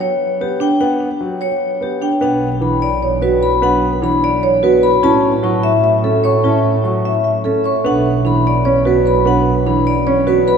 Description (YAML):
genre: classical, minimalist pattern music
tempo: 298 BPM (eighths)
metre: 7/8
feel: straight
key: B minor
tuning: A4 = 439 Hz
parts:
  - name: vibraphone with hard mallets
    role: melody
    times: 0.0-10.6 s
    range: G4 to C#6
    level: -18 LUFS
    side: left 6 dB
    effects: none
  - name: clear grand piano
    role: accompaniment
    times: 0.0-10.5 s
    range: E3 to C#4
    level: -21 LUFS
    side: left 1 dB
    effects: none
  - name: marimba with soft mallets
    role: arpeggios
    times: 0.0-10.6 s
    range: D4 to E5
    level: -16 LUFS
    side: right 4 dB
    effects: none
  - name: rich symphonic double bass section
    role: bass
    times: 2.2-10.6 s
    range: B1 to A2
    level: -19 LUFS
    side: right 2 dB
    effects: none
room: wet cathedral reverb, RT60 4.9 s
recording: none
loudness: -12 LUFS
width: side -6 dB against mid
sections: 0.0-2.2 A section; 2.2-10.6 B section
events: none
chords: 0.0 Gmaj7; 2.2 Bmadd9; 5.0 A; 7.9 Bmadd9